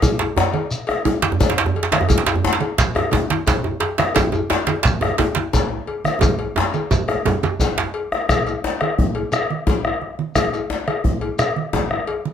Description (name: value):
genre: west african traditional, West African drum ensemble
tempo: 116 BPM (dotted quarters)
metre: 12/8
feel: straight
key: none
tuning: none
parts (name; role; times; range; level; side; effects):
- bombo; percussion; 0.0-12.1 s; none; -21 LUFS; equal; none
- congas; percussion; 0.0-12.3 s; none; -25 LUFS; right 7 dB; none
- cowbell; percussion; 0.0-12.2 s; none; -27 LUFS; left 5 dB; none
- djembe; percussion; 0.0-12.3 s; none; -24 LUFS; left 4 dB; none
- shekere; percussion; 0.0-11.6 s; none; -28 LUFS; left 2 dB; none
- djembe; percussion; 0.2-7.9 s; none; -20 LUFS; right 4 dB; none
room: light reverb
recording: none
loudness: -17 LUFS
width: side -8 dB against mid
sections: 0.0-8.3 A section; 8.3-12.3 B section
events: drum fill 6.2-8.3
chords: none